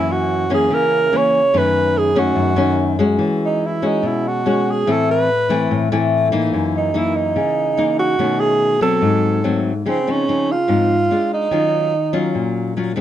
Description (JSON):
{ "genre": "bossa nova", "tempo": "144 BPM", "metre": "4/4", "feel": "straight", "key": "Db major from 9.8 s", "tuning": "A4 = 440 Hz", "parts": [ { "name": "warm alto saxophone", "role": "melody", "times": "0.0-12.5 s", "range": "C4 to C#5", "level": "-18 LUFS", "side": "right 3 dB", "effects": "none" }, { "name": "nylon-string guitar", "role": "accompaniment", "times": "0.0-13.0 s", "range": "F#2 to F#4", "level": "-18 LUFS", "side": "left 3 dB", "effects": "none" } ], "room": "light reverb", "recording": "close, detailed microphones", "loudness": "-15 LUFS", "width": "side -11 dB against mid", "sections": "0.0-9.8 A section; 9.8-13.0 B section", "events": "none", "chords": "0.0 F#7; 1.5 B9/F#; 3.2 E69; 4.9 Amadd9; 6.5 F#6; 8.2 B9; 9.0 G#7b9; 9.8 Dbmaj9; 11.1 Ddim/Ab; 11.5 Ebm9" }